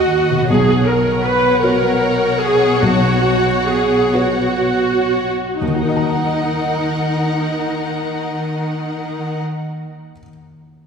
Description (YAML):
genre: cinematic, emotional film score for orchestra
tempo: 39-55 BPM (dotted quarters)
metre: 6/8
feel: rubato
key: Eb minor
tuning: A4 = 442 Hz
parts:
  - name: rich studio violin section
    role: second line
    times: 0.0-9.4 s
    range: Bb4 to Gb5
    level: -23 LUFS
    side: left 4 dB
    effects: none
  - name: felt-muted upright piano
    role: accompaniment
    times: 0.0-10.9 s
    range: B1 to Bb5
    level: -21 LUFS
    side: left 1 dB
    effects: none
  - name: rich studio viola section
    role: accompaniment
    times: 0.0-9.4 s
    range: Eb4 to B4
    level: -18 LUFS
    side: right 2 dB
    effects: none
  - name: warm studio cello section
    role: bass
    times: 0.0-9.4 s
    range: Eb2 to Eb3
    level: -23 LUFS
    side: right 1 dB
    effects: none
  - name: concert harp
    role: arpeggios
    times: 0.3-10.3 s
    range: B2 to Bb5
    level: -27 LUFS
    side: left 3 dB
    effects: none
room: wet concert hall reverb, RT60 2.4 s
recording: heard from further back in the room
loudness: -14 LUFS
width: side -6 dB against mid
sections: 0.0-5.6 A section; 5.6-8.6 B section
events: slowing down 0.0-5.6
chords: 0.5 Bsus2; 5.6 Ebm